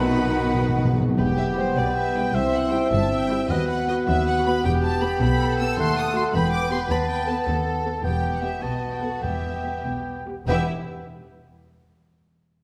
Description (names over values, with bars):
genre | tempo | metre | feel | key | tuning
quick classical-period movement for symphony orchestra | 94-109 BPM (dotted quarters) | 6/8 | rubato | E minor | A4 = 441 Hz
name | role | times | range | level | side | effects
rich studio violin section | melody | 0.0-10.7 s | B4 to E6 | -34 LUFS | equal | none
mellow hollow concert flute | second line | 0.0-1.0 s | F#5 | -35 LUFS | equal | none
rich studio violin section | second line | 0.0-10.7 s | F#4 to F#5 | -35 LUFS | equal | none
warm oboe | second line | 0.0-10.6 s | B4 to A5 | -32 LUFS | equal | none
mellow bassoon | accompaniment | 0.0-10.7 s | D#3 to C4 | -31 LUFS | equal | none
rich studio viola section | accompaniment | 0.0-10.7 s | G3 to A4 | -35 LUFS | equal | none
warm French horn section | sustained chords | 0.0-10.7 s | A3 to A4 | -32 LUFS | equal | none
rich studio cello section | bass | 0.0-10.7 s | C2 to B2 | -31 LUFS | equal | none
rich studio double bass section | bass | 0.0-10.7 s | E1 to D#2 | -31 LUFS | equal | none
timpani | percussion | 0.0-1.2, 8.0-10.7 s | E2 to B2 | -30 LUFS | equal | none
room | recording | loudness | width
wet recital hall reverb, RT60 1.7 s | none | -23 LUFS | mono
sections
0.0-1.2 A section; 1.2-10.5 B section; 10.5-11.7 C section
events
timpani fill 0.0-1.2; slowing down 7.5-10.5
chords
0.0 B; 1.2 Em; 2.3 C; 3.5 B/D#; 4.7 Em; 5.8 D#dim; 6.3 Em; 6.9 B7/D#; 8.0 Em; 8.6 B7; 9.2 Em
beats
0.58 | 1.18 1.77 | 2.35 2.92 | 3.50 4.08 | 4.65 5.22 | 5.79 6.35 | 6.90 7.47 | 8.04 8.62 | 9.23 9.85 | 10.48